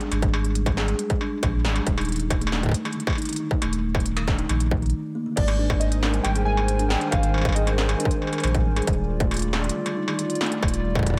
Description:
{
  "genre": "IDM",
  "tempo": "137 BPM",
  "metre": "4/4",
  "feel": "straight",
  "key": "Ab lydian",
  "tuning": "A4 = 440 Hz",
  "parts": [
    { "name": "kalimba", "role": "arpeggios", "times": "0.0-11.1 s", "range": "D3 to Ab4", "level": "-31 LUFS", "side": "equal", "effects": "tape echo" },
    { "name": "industrial drum kit", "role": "drums", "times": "0.0-11.2 s", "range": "crash cymbal, hi-hat, snare drum, struck metal", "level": "-32 LUFS", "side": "equal", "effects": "tape echo" },
    { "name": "warm sub bass", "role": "bass", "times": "0.1-11.2 s", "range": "Eb1 to Bb1", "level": "-27 LUFS", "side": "equal", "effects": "none" },
    { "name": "electronic kick drum", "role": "drums", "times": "0.2-11.2 s", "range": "none", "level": "-27 LUFS", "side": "equal", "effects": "distortion" },
    { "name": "warbly lo-fi synth keys", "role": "melody", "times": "5.4-8.6 s", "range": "C5 to Ab5", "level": "-32 LUFS", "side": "equal", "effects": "chorus, tape echo" },
    { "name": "hollow soft pad", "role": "sustained chords", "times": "5.6-11.2 s", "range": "Eb3 to Ab5", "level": "-32 LUFS", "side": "equal", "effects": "chorus" }
  ],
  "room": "light reverb",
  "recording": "none",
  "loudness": "-24 LUFS",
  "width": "mono",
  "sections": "0.0-5.4 A section; 5.4-11.2 B section",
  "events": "break 4.9-5.4",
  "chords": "0.0 Absus2; 1.9 Eb5; 5.4 Abmaj9; 8.9 Ebmaj9"
}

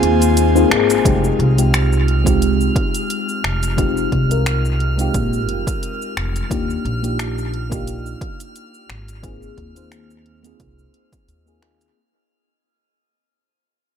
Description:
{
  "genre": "sunset chillout",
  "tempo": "88 BPM",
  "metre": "4/4",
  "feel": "swing 55% on 16ths",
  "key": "F dorian",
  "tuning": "A4 = 438 Hz",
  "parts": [
    { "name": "mellow FM electric piano", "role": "accompaniment", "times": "0.0-12.0 s", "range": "Ab3 to C5", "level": "-20 LUFS", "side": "moving between left 6 dB and right 6 dB", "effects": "chorus, phaser, auto-pan, analog delay, shimmer reverb" },
    { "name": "airy breathy pad", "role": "sustained chords", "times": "0.0-1.0 s", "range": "F4 to Ab5", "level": "-25 LUFS", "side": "equal", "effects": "chorus, shimmer reverb" },
    { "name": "upright bass", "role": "bass", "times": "0.0-11.9 s", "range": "F1 to Eb2", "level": "-19 LUFS", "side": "equal", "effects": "none" },
    { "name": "deep house drum kit", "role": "drums", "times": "0.0-11.9 s", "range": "finger snaps, hi-hat, shaker", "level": "-24 LUFS", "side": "equal", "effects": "overdrive, analog delay" },
    { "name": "electronic kick drum", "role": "drums", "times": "1.1-11.2 s", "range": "none", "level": "-22 LUFS", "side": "equal", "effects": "overdrive" },
    { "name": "drifting glass-harmonics texture", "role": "texture", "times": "1.4-12.0 s", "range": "F6", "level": "-29 LUFS", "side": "right 3 dB", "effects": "chorus, built-in reverb, shimmer reverb" }
  ],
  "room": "moderate spring reverb, RT60 2.0 s",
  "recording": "echo-heavy mix",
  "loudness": "-15 LUFS",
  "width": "side -8 dB against mid",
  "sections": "0.0-1.1 A section; 1.1-12.0 B section",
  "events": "break 0.0-1.1; band accent 0.7-1.1; fade-out 1.1-12.0",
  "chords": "0.0 Ab6; 1.1 Fm7; 6.5 Ebmaj7; 9.2 Ab6"
}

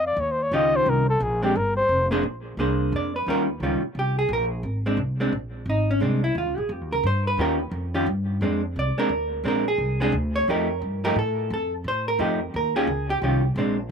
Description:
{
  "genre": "jazz, small-group swing and bop",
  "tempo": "175 BPM",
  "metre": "3/4",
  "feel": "swing 62% on 8ths",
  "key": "Bb mixolydian",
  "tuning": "A4 = 440 Hz",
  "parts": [
    { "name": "mellow flugelhorn", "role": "melody", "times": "0.0-2.1 s", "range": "G4 to Eb5", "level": "-22 LUFS", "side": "left 2 dB", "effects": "slapback echo" },
    { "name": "upright bass", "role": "bass", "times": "0.0-13.9 s", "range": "F1 to A2", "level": "-27 LUFS", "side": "equal", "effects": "none" },
    { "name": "vintage hollow-body jazz guitar", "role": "accompaniment", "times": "0.5-13.8 s", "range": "Eb3 to D5", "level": "-24 LUFS", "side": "right 1 dB", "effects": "slapback echo" }
  ],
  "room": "little or no reverb",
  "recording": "recorded outdoors, with no room sound",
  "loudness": "-21 LUFS",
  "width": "side -6 dB against mid",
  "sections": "0.0-2.2 A section; 2.2-13.9 A section",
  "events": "flugelhorn solo 0.0-2.2",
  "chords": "0.2 Eb9; 1.2 Bb9; 1.9 F5; 2.2 Bb9; 3.3 Eb9; 4.3 Bb9; 6.4 Eb9; 8.4 Bb9; 10.5 F9; 12.5 Eb9"
}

